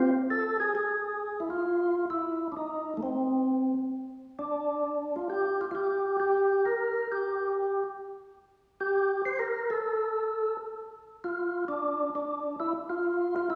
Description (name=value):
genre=jazz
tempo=132 BPM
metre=4/4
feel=swing 68% on 8ths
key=unclear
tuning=A4 = 440 Hz
part: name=percussive tonewheel organ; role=solo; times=0.0-13.6 s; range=A3 to C5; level=-30 LUFS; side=equal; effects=slow rotary speaker, overdrive, chorus vibrato
room=wet recital hall reverb, RT60 1.7 s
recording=recorded in a church or concert hall, small room ambience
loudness=-30 LUFS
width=mono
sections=0.7-13.6 A section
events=none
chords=0.0 F5; 0.7 N.C.